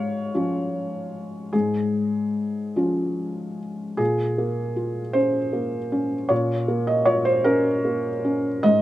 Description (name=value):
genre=neoclassical minimalist piano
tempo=48-54 BPM (dotted quarters)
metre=6/8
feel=rubato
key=Bb minor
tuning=A4 = 445 Hz
part: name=felt-muted upright piano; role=solo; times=0.0-8.8 s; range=Ab2 to F5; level=-21 LUFS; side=equal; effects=slapback echo
room=light reverb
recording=recorded outdoors, with no room sound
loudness=-21 LUFS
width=side -14 dB against mid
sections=0.0-4.0 A section; 4.0-8.8 A section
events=none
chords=0.0 Db/Ab; 4.0 Bbm7